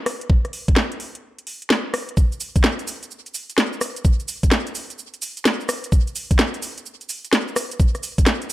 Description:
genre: UK garage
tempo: 128 BPM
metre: 4/4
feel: swing 65% on 16ths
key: none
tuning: none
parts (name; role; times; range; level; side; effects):
- garage drum kit; drums; 0.1-8.5 s; hi-hat, rim click, shaker, snare drum; -22 LUFS; equal; studio reverb
- electronic kick drum; drums; 0.3-8.2 s; none; -16 LUFS; equal; studio reverb
room: moderate spring reverb, RT60 1.2 s, digital ambience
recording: echo-heavy mix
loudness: -18 LUFS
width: side -16 dB against mid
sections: 0.0-8.5 A section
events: none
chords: none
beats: | 0.30 0.77 1.23 1.70 | 2.17 2.64 3.11 3.58 | 4.05 4.52 4.98 5.45 | 5.92 6.39 6.86 7.33 | 7.80 8.27

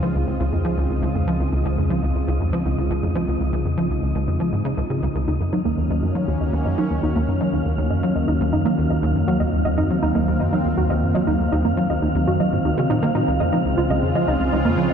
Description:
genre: ambient, sequencer-driven space music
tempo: 120 BPM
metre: 4/4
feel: straight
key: Eb dorian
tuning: A4 = 440 Hz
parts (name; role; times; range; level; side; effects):
- sweeping resonant pad; sustained chords; 0.0-14.9 s; Db3 to F4; -24 LUFS; equal; chorus
- tight sequencer bass; riff; 0.0-14.9 s; Db2 to Gb3; -22 LUFS; equal; ensemble chorus, tape echo
- analog drone; bass; 0.0-14.9 s; Db2 to Eb2; -30 LUFS; equal; none
- wind-like tuned noise texture; texture; 0.0-14.9 s; Eb4 to F5; -30 LUFS; equal; built-in reverb
- warbly dusty pluck; arpeggios; 5.3-14.9 s; Bb3 to Eb5; -25 LUFS; right 2 dB; chorus, auto-pan, tape echo
room: wet cathedral reverb, RT60 5.0 s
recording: in a vast, echoing space, lossy compression artefacts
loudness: -18 LUFS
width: side -7 dB against mid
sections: 0.0-14.9 A section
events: fade-in on analog synth pad 0.0-14.9; fade-in on synth texture 0.0-14.9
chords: 0.0 Dbmaj7; 5.3 Ebm7; 13.3 Dbmaj7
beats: 0.28 0.78 | 1.28 1.78 2.28 2.78 | 3.28 3.78 4.28 4.78 | 5.28 5.78 6.28 6.78 | 7.28 7.78 8.28 8.78 | 9.28 9.78 10.28 10.78 | 11.28 11.78 12.28 12.78 | 13.28 13.78 14.28 14.78

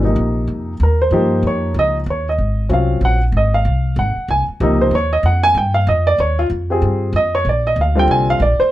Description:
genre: jazz piano trio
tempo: 189 BPM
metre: 4/4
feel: swing 62% on 8ths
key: Eb mixolydian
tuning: A4 = 440 Hz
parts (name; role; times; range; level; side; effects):
- warm baby grand piano; melody; 0.0-8.7 s; C3 to Ab5; -16 LUFS; equal; none
- upright bass; bass; 0.0-8.6 s; Ab1 to G2; -17 LUFS; equal; none
room: light reverb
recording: none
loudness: -14 LUFS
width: side -14 dB against mid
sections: 0.0-8.7 A section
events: grand piano solo 0.0-8.7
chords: 0.0 Abadd9; 1.1 Eb9; 2.4 Ab9; 4.9 Ebadd9; 7.5 Bbadd9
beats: 0.16 0.48 0.79 | 1.11 1.43 1.75 2.06 | 2.38 2.70 3.01 3.33 | 3.65 3.96 4.28 4.60 | 4.92 5.23 5.55 5.87 | 6.18 6.50 6.82 7.13 | 7.45 7.77 8.08 8.40

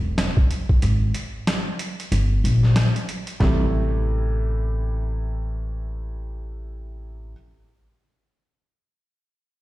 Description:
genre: hip hop, boom-bap hip-hop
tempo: 93 BPM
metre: 4/4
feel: swing 60% on 16ths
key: A phrygian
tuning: A4 = 440 Hz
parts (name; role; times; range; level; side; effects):
- upright bass; bass; 0.0-7.3 s; E1 to Bb1; -22 LUFS; equal; none
- boom bap sampler-style drum kit; drums; 0.2-3.6 s; hi-hat, kick drum, rim click, snare drum; -22 LUFS; equal; none
- dark grand piano; accompaniment; 3.4-7.3 s; C3 to A3; -28 LUFS; right 1 dB; high-pass filter, low-pass filter, plate reverb
room: little or no reverb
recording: played on a big sound system in a bare room, stone room reverb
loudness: -20 LUFS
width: side -17 dB against mid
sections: 0.0-3.4 A section; 3.4-6.0 B section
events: break 0.0-3.4; kick muted 0.8-3.4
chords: 0.0 N.C.; 2.1 Gm; 3.4 Am7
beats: 0.18 | 0.82 1.47 2.11 2.76 | 3.40 4.05 4.69 5.34

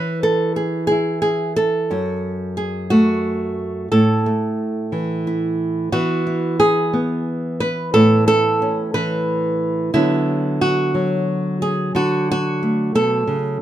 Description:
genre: folk, solo fingerstyle acoustic guitar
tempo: 60 BPM (dotted quarters)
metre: 6/8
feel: straight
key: A major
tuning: A4 = 440 Hz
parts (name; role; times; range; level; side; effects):
- nylon-string guitar; solo; 0.0-13.6 s; F#2 to C#5; -17 LUFS; right 1 dB; none
room: light reverb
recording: close, detailed microphones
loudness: -17 LUFS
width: side -12 dB against mid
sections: 0.0-5.9 A section; 5.9-13.6 B section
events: none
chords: 0.0 E; 1.9 F#m; 3.9 A5; 5.9 Eadd9; 7.9 Aadd9; 9.9 D6; 11.9 Bm7/D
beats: 0.90 | 1.91 2.91 | 3.91 4.92 | 5.92 6.93 | 7.93 8.94 | 9.94 10.94 | 11.95 12.95

